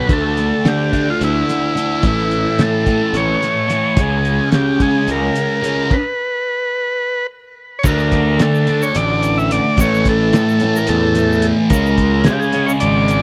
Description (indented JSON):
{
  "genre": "psychedelic rock",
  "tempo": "217 BPM (eighths)",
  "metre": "7/8",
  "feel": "straight",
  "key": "unclear",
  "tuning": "A4 = 440 Hz",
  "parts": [
    { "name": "overdriven combo organ", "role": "melody", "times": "0.0-13.2 s", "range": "E4 to E5", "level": "-21 LUFS", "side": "equal", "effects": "tape echo" },
    { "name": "thick fuzz guitar", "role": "riff", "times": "0.0-13.2 s", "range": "A2 to D4", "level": "-21 LUFS", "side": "equal", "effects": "distortion, phaser" },
    { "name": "fuzz picked electric bass", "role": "bass", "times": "0.1-13.2 s", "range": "G#1 to D3", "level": "-20 LUFS", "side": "equal", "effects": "overdrive" },
    { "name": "cloth-damped thuddy drum kit", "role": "drums", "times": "0.1-13.2 s", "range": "crash cymbal, hi-hat, kick drum, snare drum", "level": "-20 LUFS", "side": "equal", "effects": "none" },
    { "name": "egg shaker", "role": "percussion", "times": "7.9-13.2 s", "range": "none", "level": "-36 LUFS", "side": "equal", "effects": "none" }
  ],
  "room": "small room ambience",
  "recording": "dry, close 1970s-style studio recording",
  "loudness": "-16 LUFS",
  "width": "mono",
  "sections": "0.0-7.8 A section; 7.8-13.2 B section",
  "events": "stop 5.9-7.8",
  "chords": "0.1 D5; 2.0 A; 4.0 C#5; 5.9 N.C.; 7.8 D5; 9.8 A5; 11.7 C#5"
}